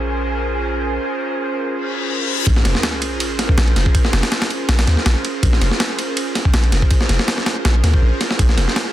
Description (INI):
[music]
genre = drum and bass, jungle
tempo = 162 BPM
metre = 4/4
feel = swing 54% on 16ths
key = Bb minor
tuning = A4 = 440 Hz
[part]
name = airy breathy pad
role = sustained chords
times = 0.0-8.9 s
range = Db4 to C5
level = -23 LUFS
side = right 2 dB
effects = chorus, vintage 12-bit sampler grit
[part]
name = long sustained 808-style bass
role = bass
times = 0.0-8.7 s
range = F1 to Eb2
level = -17 LUFS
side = equal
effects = none
[part]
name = wind-like tuned noise texture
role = texture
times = 0.0-1.0 s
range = Ab5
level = -30 LUFS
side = right 1 dB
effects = built-in reverb
[part]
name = reverse cymbal and sub drop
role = sound effects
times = 1.8-3.9 s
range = none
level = -25 LUFS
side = left 4 dB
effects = none
[part]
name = breakbeat sampler-style drum kit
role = drums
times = 2.5-8.9 s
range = kick drum, ride cymbal, snare drum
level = -17 LUFS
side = equal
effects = none
[sound]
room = light reverb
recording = dense, heavily limited modern master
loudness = -15 LUFS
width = side -13 dB against mid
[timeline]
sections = 0.0-2.5 A section; 2.5-8.9 B section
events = reverse cymbal 1.8-2.5; drop 2.5-8.9; impact 2.5-3.9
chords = 0.0 Bbm9